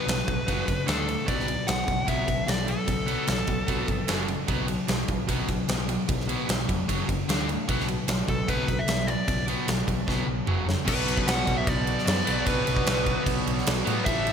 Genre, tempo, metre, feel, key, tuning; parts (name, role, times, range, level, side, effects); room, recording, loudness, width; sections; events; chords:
hard rock; 150 BPM; 4/4; straight; B minor; A4 = 441 Hz
dark smooth lead guitar; melody; 0.0-4.2, 8.3-14.3 s; A4 to F#5; -30 LUFS; left 1 dB; overdrive, slapback echo
biting overdriven guitar; riff; 0.0-14.3 s; F#2 to D4; -32 LUFS; right 9 dB
overdriven semi-hollow guitar; riff; 0.0-14.3 s; F#2 to D4; -32 LUFS; left 9 dB; spring reverb
hollow-body short-scale fingered electric bass; bass; 0.1-14.3 s; E#1 to A2; -31 LUFS; equal
huge arena drum kit; drums; 0.1-14.3 s; crash cymbal, kick drum, ride cymbal, snare drum, toms; -27 LUFS; equal
phased analog pad; sustained chords; 11.2-14.3 s; A3 to D5; -38 LUFS; right 1 dB
high-gain distorted guitar; riff; 10.9-14.3 s; A2 to B3; -33 LUFS; equal; distortion, slapback echo
moderate lush hall reverb, RT60 1.8 s, studio reverb; big arena sound; -23 LUFS; side -7 dB against mid
0.0-10.9 A section; 10.9-14.3 B section
drum fill 10.1-10.9
0.5 F#5; 0.9 D5; 1.3 Bm; 4.1 F#5; 4.5 B5; 6.9 F#5; 7.3 D5; 7.7 B5; 10.5 F#5; 10.9 Bm